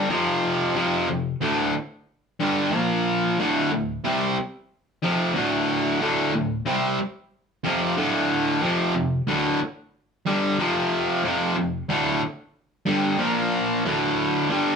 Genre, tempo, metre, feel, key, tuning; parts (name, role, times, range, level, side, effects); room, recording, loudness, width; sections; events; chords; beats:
rock; 92 BPM; 4/4; straight; D minor; A4 = 440 Hz
distorted electric guitar; solo; 0.0-14.8 s; D2 to C4; -21 LUFS; equal; overdrive
moderate studio reverb, RT60 0.7 s; band playing live in one room; -21 LUFS; side -6 dB against mid
0.0-13.8 A section
0.0 Dm; 2.7 Bb5; 3.4 Dm; 13.2 Bb5; 13.8 D5
0.10 | 0.76 1.42 2.07 2.73 | 3.38 4.04 4.69 5.34 | 6.00 6.65 7.31 7.96 | 8.61 9.27 9.92 10.57 | 11.23 11.88 12.53 13.19 | 13.85 14.50